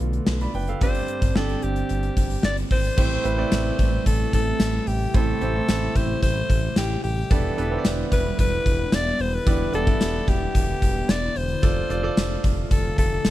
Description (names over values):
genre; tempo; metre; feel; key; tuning
1980s-style pop; 111 BPM; 4/4; straight; A minor; A4 = 438 Hz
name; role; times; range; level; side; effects
bright concert grand piano; accompaniment; 0.0-13.3 s; G2 to B5; -30 LUFS; right 6 dB; none
phased analog pad; sustained chords; 0.0-13.3 s; C3 to G4; -32 LUFS; left 1 dB; phaser, chorus
smooth synth bass; bass; 0.0-13.3 s; E1 to B1; -26 LUFS; equal; none
gated 80s drum kit; drums; 0.0-13.3 s; crash cymbal, hi-hat, kick drum, snare drum, tambourine; -22 LUFS; equal; none
raspy alto saxophone; melody; 0.8-13.3 s; G4 to D5; -27 LUFS; left 2 dB; none
room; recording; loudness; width
little or no reverb; none; -20 LUFS; side -14 dB against mid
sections
0.0-3.0 A section; 3.0-13.3 B section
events
none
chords
0.0 Bm7b5; 0.8 Gsus4; 3.0 Am7; 7.3 Em7; 11.6 Dm/F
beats
0.28 | 0.82 1.36 1.90 2.44 | 2.98 3.52 4.06 4.60 | 5.14 5.68 6.22 6.76 | 7.30 7.84 8.39 8.93 | 9.47 10.01 10.55 11.09 | 11.63 12.17 12.71 13.25